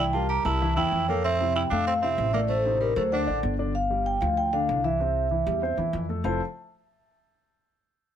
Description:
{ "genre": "jazz", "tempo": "192 BPM", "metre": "4/4", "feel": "straight", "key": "F major", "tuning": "A4 = 442 Hz", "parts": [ { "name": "vibraphone with soft mallets", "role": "melody", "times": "0.0-6.4 s", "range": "Bb4 to Bb5", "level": "-26 LUFS", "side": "right 2 dB", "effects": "plate reverb" }, { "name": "growling tenor saxophone", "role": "second line", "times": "0.0-3.4 s", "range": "G3 to G4", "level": "-30 LUFS", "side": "right 4 dB", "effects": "none" }, { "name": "dark grand piano", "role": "accompaniment", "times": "0.0-6.4 s", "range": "A2 to E5", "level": "-30 LUFS", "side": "left 5 dB", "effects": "none" }, { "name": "upright bass", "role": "bass", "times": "0.0-6.4 s", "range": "F1 to F2", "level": "-29 LUFS", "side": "equal", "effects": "none" } ], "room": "light reverb", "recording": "none", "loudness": "-23 LUFS", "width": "side -9 dB against mid", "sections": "0.0-3.7 A section; 3.7-6.2 B section; 6.2-7.5 C section", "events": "none", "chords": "0.0 C7; 1.2 Fmaj7; 2.5 Adim; 3.1 D; 3.7 G5; 5.0 C6; 6.2 Fmaj7" }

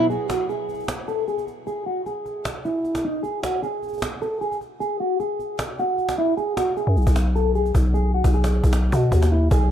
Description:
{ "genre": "hip hop, trap", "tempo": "153 BPM", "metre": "4/4", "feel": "half-time", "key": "unclear", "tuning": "A4 = 440 Hz", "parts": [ { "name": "electric guitar at the edge of break-up", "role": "melody", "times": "0.0-9.7 s", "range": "D#4 to A4", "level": "-24 LUFS", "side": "equal", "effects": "phaser, low-pass filter" }, { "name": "cajon", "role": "drums", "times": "0.1-9.6 s", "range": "none", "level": "-28 LUFS", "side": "equal", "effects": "none" }, { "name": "growling 808-style bass", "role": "bass", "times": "6.9-9.7 s", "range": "B1 to B2", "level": "-18 LUFS", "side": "equal", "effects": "none" } ], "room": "studio reverb", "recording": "lossy compression artefacts", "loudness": "-20 LUFS", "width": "side -10 dB against mid", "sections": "0.1-9.7 A section", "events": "break 0.1-6.4; filter sweep on clean electric guitar 0.1-9.7; kick muted 6.4-6.8", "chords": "0.1 N.C.; 6.4 B5" }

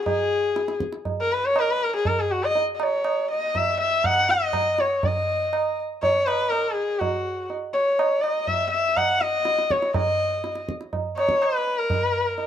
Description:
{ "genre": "indian classical, Hindustani", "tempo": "122 BPM", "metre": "5/4", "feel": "straight", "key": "Eb raga bhairavi", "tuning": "A4 = 436 Hz", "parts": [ { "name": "warm sarangi", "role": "melody", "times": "0.0-12.5 s", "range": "Gb4 to Gb5", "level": "-22 LUFS", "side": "left 2 dB", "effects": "none" }, { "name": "tabla", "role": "percussion", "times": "0.1-12.5 s", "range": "none", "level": "-27 LUFS", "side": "right 5 dB", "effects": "none" } ], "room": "moderate small room reverb, RT60 0.5 s", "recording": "none", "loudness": "-21 LUFS", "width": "side -10 dB against mid", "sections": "0.0-5.0 A section; 5.0-12.5 B section", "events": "none", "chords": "none" }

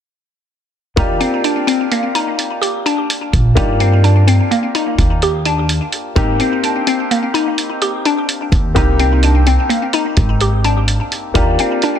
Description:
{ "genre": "progressive instrumental, band music in an uneven meter", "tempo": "254 BPM (eighths)", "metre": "11/8", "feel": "straight", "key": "Eb major", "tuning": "A4 = 440 Hz", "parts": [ { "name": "clear concert grand piano", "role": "accompaniment", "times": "1.0-12.0 s", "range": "Bb3 to G4", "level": "-21 LUFS", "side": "left 3 dB", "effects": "none" }, { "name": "glassy wavetable pluck", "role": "arpeggios", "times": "1.0-12.0 s", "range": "Bb3 to G4", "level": "-17 LUFS", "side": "left 1 dB", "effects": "chorus, digital delay" }, { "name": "upright bass", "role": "bass", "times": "1.0-11.6 s", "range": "Ab1 to G2", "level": "-14 LUFS", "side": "equal", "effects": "none" }, { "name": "lo-fi sampler-style drum kit", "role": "drums", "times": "1.0-11.9 s", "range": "hi-hat, kick drum", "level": "-18 LUFS", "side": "right 1 dB", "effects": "none" } ], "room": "light reverb, small room ambience", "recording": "dense, heavily limited modern master", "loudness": "-12 LUFS", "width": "side -9 dB against mid", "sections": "1.0-12.0 A section", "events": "none", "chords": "1.0 Ebmaj7; 6.2 Abmaj7; 11.4 Ebmaj7" }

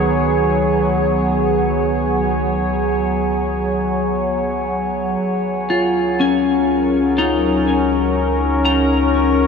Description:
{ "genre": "ambient", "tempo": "61 BPM", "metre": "4/4", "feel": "straight", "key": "Db mixolydian", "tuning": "A4 = 440 Hz", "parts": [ { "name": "evolving wavetable pad", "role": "sustained chords", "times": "0.0-9.5 s", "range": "Gb3 to Db5", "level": "-17 LUFS", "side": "equal", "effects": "chorus, built-in reverb, shimmer reverb" }, { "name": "clean electric guitar", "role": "arpeggios", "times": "0.0-9.5 s", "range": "Eb3 to Bb5", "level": "-20 LUFS", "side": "left 2 dB", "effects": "wide subtle chorus, diffuse ambient delay, shimmer reverb" }, { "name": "warm sub bass", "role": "bass", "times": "0.0-9.5 s", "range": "Db2", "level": "-26 LUFS", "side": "equal", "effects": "none" }, { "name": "glass harmonica", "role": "texture", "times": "0.0-9.5 s", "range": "Ab4 to Ab5", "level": "-28 LUFS", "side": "right 1 dB", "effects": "shimmer reverb" } ], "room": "wet huge ambient reverb, RT60 8.1 s", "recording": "none", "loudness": "-15 LUFS", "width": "side -6 dB against mid", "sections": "0.0-9.5 A section", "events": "none", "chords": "0.0 Db7sus4; 5.2 Gb/Db" }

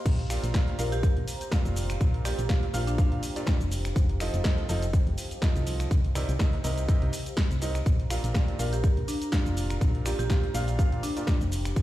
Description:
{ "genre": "piano house", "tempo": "123 BPM", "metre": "4/4", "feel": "swing 55% on 16ths", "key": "Bb major", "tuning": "A4 = 442 Hz", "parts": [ { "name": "deep dark ambient pad", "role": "texture", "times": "0.0-11.8 s", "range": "G4 to Bb5", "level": "-41 LUFS", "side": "right 1 dB", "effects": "chorus, built-in reverb, sidechain pumping" }, { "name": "solid FM bass", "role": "bass", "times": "0.1-11.8 s", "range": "F1 to C2", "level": "-29 LUFS", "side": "equal", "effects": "sidechain pumping" }, { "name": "electronic kick drum", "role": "drums", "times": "0.1-11.8 s", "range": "none", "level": "-24 LUFS", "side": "equal", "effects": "none" }, { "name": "punchy analog drum machine", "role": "drums", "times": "0.1-11.8 s", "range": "crash cymbal, finger snaps, hi-hat, shaker, snare drum", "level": "-36 LUFS", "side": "equal", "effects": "none" }, { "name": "clear upright piano", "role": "riff", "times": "0.3-11.4 s", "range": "Bb2 to F5", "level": "-35 LUFS", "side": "right 2 dB", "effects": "sidechain pumping, tape echo" }, { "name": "marimba with medium mallets", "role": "melody", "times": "0.8-3.6, 8.6-11.7 s", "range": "D4 to Bb4", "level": "-35 LUFS", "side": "equal", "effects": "tape echo" } ], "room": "little or no reverb", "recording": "played on a big sound system in a bare room, stone room reverb", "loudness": "-24 LUFS", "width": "side -15 dB against mid", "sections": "0.1-11.8 A section", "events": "drop 0.1-11.8", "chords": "0.1 Bb6; 4.0 F7; 5.9 Cm7; 7.9 Bb6" }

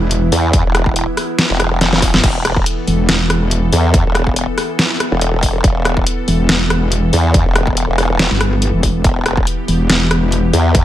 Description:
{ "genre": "heavy wobble dubstep", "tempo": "141 BPM", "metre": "4/4", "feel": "swing 54% on 16ths, half-time", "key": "E minor", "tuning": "A4 = 441 Hz", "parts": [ { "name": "evolving wavetable pad", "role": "sustained chords", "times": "0.0-10.8 s", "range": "E3 to A4", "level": "-22 LUFS", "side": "left 1 dB", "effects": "chorus, built-in reverb, sidechain pumping" }, { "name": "metallic wobble bass", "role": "bass", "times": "0.0-3.7, 6.3-10.5 s", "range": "E1 to G1", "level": "-15 LUFS", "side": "equal", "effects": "chorus, overdrive" }, { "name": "dubstep drum kit", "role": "drums", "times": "0.1-10.8 s", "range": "crash cymbal, hi-hat, rim click, snare drum", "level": "-17 LUFS", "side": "equal", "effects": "none" }, { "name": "formant-sweep wobble bass", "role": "bass", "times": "0.3-10.8 s", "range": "E1 to E2", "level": "-15 LUFS", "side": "equal", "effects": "chorus, overdrive" }, { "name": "electronic kick drum", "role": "drums", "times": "0.5-10.8 s", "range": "none", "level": "-16 LUFS", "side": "equal", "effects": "overdrive" } ], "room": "digital ambience", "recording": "none", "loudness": "-12 LUFS", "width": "side -13 dB against mid", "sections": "0.0-10.8 A section", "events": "drum fill 1.8-2.2", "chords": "0.0 E5" }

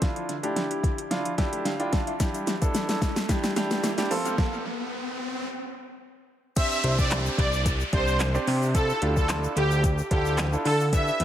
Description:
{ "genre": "dance-pop", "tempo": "110 BPM", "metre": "4/4", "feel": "straight", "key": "unclear", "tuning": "A4 = 440 Hz", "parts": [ { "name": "clear concert grand piano", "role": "accompaniment", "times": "0.0-11.2 s", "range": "C4 to A5", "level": "-30 LUFS", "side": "right 1 dB", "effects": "sidechain pumping, tape echo" }, { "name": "analog pluck", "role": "arpeggios", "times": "0.0-4.3 s", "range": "D3 to F5", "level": "-37 LUFS", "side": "equal", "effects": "chorus, sidechain pumping, tape echo" }, { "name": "smooth R&B drum kit", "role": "drums", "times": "0.0-11.2 s", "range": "crash cymbal, handclaps, hi-hat, kick drum, snare drum", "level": "-27 LUFS", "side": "equal", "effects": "overdrive, tape echo" }, { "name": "riser and downlifter", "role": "sound effects", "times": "0.4-10.9 s", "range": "none", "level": "-35 LUFS", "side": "equal", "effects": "none" }, { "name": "tube shaker", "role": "percussion", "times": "2.2-11.2 s", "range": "none", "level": "-43 LUFS", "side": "left 12 dB", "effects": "tape echo" }, { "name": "soft supersaw", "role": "melody", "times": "6.6-11.2 s", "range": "G4 to E5", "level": "-27 LUFS", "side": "right 1 dB", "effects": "sidechain pumping, tape echo" }, { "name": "fat analog bass", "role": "bass", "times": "6.8-11.2 s", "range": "C2 to D3", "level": "-26 LUFS", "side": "equal", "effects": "sidechain pumping" } ], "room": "moderate spring reverb, RT60 1.6 s, digital ambience", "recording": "echo-heavy mix", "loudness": "-23 LUFS", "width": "side -11 dB against mid", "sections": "0.0-6.6 A section; 6.6-11.2 B section", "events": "build-up 0.0-6.6; drum fill 0.0-4.4; riser 0.4-6.6; grand piano fill 1.1-2.2; stop 4.4-6.6; drop 6.6-11.2", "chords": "0.0 Dmadd9; 2.2 Em7; 4.1 F; 6.6 Csus2; 8.7 Dmadd9" }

